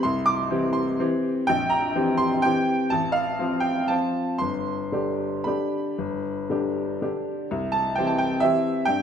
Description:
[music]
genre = classical, piano waltz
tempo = 112-140 BPM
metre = 3/4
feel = rubato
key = C major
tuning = A4 = 440 Hz
[part]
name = clear upright piano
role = solo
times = 0.0-9.0 s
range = G1 to D6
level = -22 LUFS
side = equal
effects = none
[sound]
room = moderate recital hall reverb, RT60 1.6 s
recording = none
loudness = -22 LUFS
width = side -8 dB against mid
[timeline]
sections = 0.0-7.5 A section; 7.5-9.0 B section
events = none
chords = 0.0 C; 1.5 C7/Bb; 2.9 F/A; 4.4 G; 7.5 C

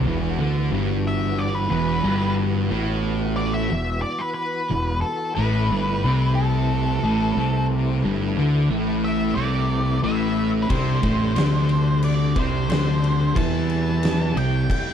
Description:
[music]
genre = stoner and doom metal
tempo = 90 BPM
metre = 4/4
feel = straight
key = E minor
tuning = A4 = 436 Hz
[part]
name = tonewheel organ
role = sustained chords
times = 0.0-14.9 s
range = C3 to B4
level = -33 LUFS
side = equal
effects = slow rotary speaker, overdrive, chorus vibrato
[part]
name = crunchy overdriven guitar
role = riff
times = 0.0-14.6 s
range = E2 to E3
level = -26 LUFS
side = left 1 dB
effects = none
[part]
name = thick fuzz guitar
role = riff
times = 0.0-14.6 s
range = E2 to E3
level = -26 LUFS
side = left 7 dB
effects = distortion
[part]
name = thick fuzz guitar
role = riff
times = 0.0-14.6 s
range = E2 to E3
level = -25 LUFS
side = right 7 dB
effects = distortion
[part]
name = fuzz fingered electric bass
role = bass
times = 0.0-14.7 s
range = E1 to E2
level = -27 LUFS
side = equal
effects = overdrive
[part]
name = octave-fuzz lead guitar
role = melody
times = 1.1-14.9 s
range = A4 to A5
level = -28 LUFS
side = left 1 dB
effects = distortion, tape echo
[part]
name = oversized low-tuned drum kit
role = drums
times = 10.7-14.9 s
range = crash cymbal, kick drum, snare drum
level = -26 LUFS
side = equal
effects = none
[sound]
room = light reverb, small room ambience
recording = dark, warm production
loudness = -19 LUFS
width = side -8 dB against mid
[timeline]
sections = 0.1-14.9 A section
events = none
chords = 0.1 Em; 5.4 A5; 10.7 C5

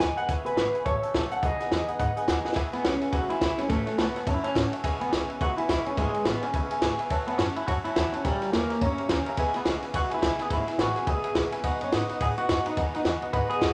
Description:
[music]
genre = rockabilly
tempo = 211 BPM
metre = 4/4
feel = swing 60% on 8ths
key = E major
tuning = A4 = 440 Hz
[part]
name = electric guitar through a small old amp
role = melody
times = 0.0-13.7 s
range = G3 to G#5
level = -32 LUFS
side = equal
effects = harmonic tremolo
[part]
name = picked swing-style acoustic guitar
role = accompaniment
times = 0.0-13.7 s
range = A2 to A#4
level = -35 LUFS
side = equal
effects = none
[part]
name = tack piano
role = accompaniment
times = 0.0-13.7 s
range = B4 to A#5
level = -37 LUFS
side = equal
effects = none
[part]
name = upright bass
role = bass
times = 0.0-13.7 s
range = E1 to A2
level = -38 LUFS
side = equal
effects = none
[part]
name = compact cocktail drum kit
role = drums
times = 0.0-13.7 s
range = hi-hat, kick drum, ride cymbal, snare drum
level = -31 LUFS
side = equal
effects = none
[sound]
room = moderate large studio reverb, RT60 1.3 s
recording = none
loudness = -27 LUFS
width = mono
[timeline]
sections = 0.0-2.6 A section; 2.6-13.7 A section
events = drum fill 2.4; honky-tonk piano fill 6.7-7.1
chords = 0.3 E6; 0.9 A6; 1.4 B6; 2.6 E6; 3.7 A6; 4.8 E6; 7.1 A6; 8.2 A#dim7; 9.4 E6; 11.6 B6

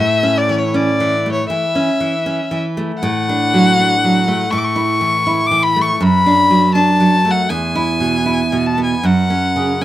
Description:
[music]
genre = romantic duo for violin and classical guitar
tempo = 79 BPM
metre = 4/4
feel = rubato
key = A major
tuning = A4 = 440 Hz
[part]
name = rich violin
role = melody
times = 0.0-9.8 s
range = C#5 to D6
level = -16 LUFS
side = left 3 dB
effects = none
[part]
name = nylon-string guitar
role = accompaniment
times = 0.0-9.8 s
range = E2 to E4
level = -16 LUFS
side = right 2 dB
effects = none
[sound]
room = light reverb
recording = rough home demo mix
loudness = -13 LUFS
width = side -13 dB against mid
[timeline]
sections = 0.0-9.8 A section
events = none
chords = 0.0 A; 3.0 D/A; 4.5 A; 6.0 D/F#; 7.5 E; 9.0 F#5

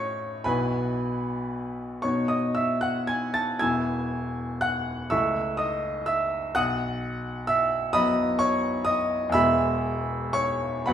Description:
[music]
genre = classical, romantic nocturne for solo piano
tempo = 37-44 BPM (dotted quarters)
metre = 6/8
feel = rubato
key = E major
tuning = A4 = 438 Hz
[part]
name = clear baby grand piano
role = solo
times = 0.0-10.9 s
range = E1 to A6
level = -24 LUFS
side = equal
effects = none
[sound]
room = moderate recital hall reverb, RT60 1.5 s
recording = minimal, uncompressed stereo recording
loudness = -24 LUFS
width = side -9 dB against mid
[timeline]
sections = 0.0-10.9 A section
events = none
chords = 0.4 E/B; 2.0 B; 3.6 E; 5.1 A/C#; 6.6 B; 9.4 E

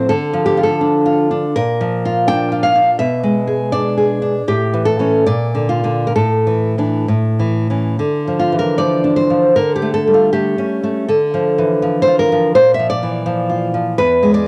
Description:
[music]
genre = romantic piece for solo classical guitar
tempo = 63-86 BPM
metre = 2/4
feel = rubato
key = D minor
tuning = A4 = 440 Hz
[part]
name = nylon-string guitar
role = solo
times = 0.0-14.5 s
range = E2 to G5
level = -16 LUFS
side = equal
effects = cassette tape
[sound]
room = moderate spring reverb, RT60 1.9 s, studio reverb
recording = home recording on cassette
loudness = -16 LUFS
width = mono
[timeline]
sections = 0.0-8.0 A section; 8.0-14.5 B section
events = none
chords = 0.1 Dm; 1.6 Bb; 3.0 E7/B; 4.5 A7; 5.3 Bb; 6.2 Asus4; 7.1 A; 8.0 Dm; 9.6 A7/D; 11.1 Dm; 12.5 Bb; 14.0 E

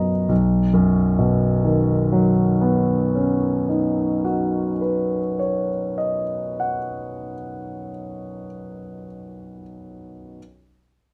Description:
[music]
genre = classical, impressionist solo piano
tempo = 23 BPM (dotted quarters)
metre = 9/8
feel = rubato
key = unclear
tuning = A4 = 440 Hz
[part]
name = clear concert grand piano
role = solo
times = 0.0-10.4 s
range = B1 to D#7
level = -22 LUFS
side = equal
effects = none
[sound]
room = light reverb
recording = close, detailed microphones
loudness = -20 LUFS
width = mono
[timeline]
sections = 0.3-8.2 A section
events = none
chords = 0.3 Badd9

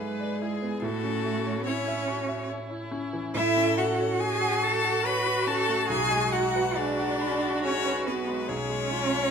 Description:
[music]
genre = classical, slow romantic movement for piano quartet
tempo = 70 BPM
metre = 3/4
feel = rubato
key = A major, F# minor from 3.3 s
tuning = A4 = 443 Hz
[part]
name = rich violin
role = melody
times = 0.0-9.3 s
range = G#4 to B5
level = -30 LUFS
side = left 10 dB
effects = none
[part]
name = rich cello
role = second line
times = 0.0-9.3 s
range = G#3 to B4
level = -28 LUFS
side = right 5 dB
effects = none
[part]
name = clear concert grand piano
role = accompaniment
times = 0.0-9.3 s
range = B1 to D6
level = -31 LUFS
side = equal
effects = none
[part]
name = rich viola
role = accompaniment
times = 0.0-9.3 s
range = E4 to B4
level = -33 LUFS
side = equal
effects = none
[sound]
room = wet recital hall reverb, RT60 1.7 s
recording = close, detailed microphones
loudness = -24 LUFS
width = side -6 dB against mid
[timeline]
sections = 0.0-9.3 A section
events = none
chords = 0.0 E7/G#; 0.8 A; 3.3 F#m/A; 5.9 G#m7b5/B; 8.5 C#7/B

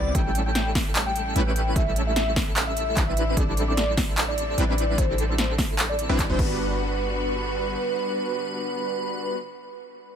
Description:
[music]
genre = future bass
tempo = 149 BPM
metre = 4/4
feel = swing 53% on 16ths, half-time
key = G major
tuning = A4 = 439 Hz
[part]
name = warm velvety synth lead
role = melody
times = 0.0-9.4 s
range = B4 to G5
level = -30 LUFS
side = equal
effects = chorus, phaser, cassette tape, sidechain pumping, tape echo
[part]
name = bright symphonic string section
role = sustained chords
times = 0.0-9.4 s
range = C3 to F#4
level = -36 LUFS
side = left 1 dB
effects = sidechain pumping
[part]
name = airy dreamy lead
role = arpeggios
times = 0.0-9.4 s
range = A4 to D5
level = -32 LUFS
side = right 1 dB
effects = chorus, sidechain pumping, dub echo
[part]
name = supersaw stab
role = riff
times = 0.0-9.4 s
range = G3 to D5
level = -30 LUFS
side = equal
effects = vintage 12-bit sampler grit, sidechain pumping, dub echo
[part]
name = warm 808-style bass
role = bass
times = 0.0-7.8 s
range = G1 to C2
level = -27 LUFS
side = equal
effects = sidechain pumping
[part]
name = big-room dance drum kit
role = drums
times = 0.1-6.5 s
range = crash cymbal, handclaps, hi-hat, snare drum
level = -27 LUFS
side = equal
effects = none
[part]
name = electronic kick drum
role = drums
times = 0.1-6.5 s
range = none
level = -25 LUFS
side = equal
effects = none
[sound]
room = digital ambience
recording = none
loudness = -22 LUFS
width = side -8 dB against mid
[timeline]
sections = 0.0-6.6 A section; 6.6-9.8 B section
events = drop 0.0-6.6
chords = 0.1 A7; 3.2 D9sus4/A; 6.4 Gmaj7

